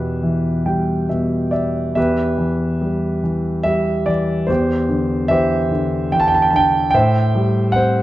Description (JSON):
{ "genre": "classical, lyrical solo piano", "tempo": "73 BPM", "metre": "3/4", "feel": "rubato", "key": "E minor", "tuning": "A4 = 438 Hz", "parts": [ { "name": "warm concert grand piano", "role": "solo", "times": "0.0-8.0 s", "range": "E2 to A5", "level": "-15 LUFS", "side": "equal", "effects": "none" } ], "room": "moderate recital hall reverb, RT60 1.4 s", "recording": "dark, warm production", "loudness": "-15 LUFS", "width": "side -15 dB against mid", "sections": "0.0-2.0 A section; 2.0-8.0 B section", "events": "grand piano fill 0.2-2.0", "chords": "0.0 Em; 4.5 Cadd9/E; 6.9 Am7", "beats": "0.23 1.10 | 1.97 2.82 3.67 | 4.49 5.31 6.13 | 6.94 7.76" }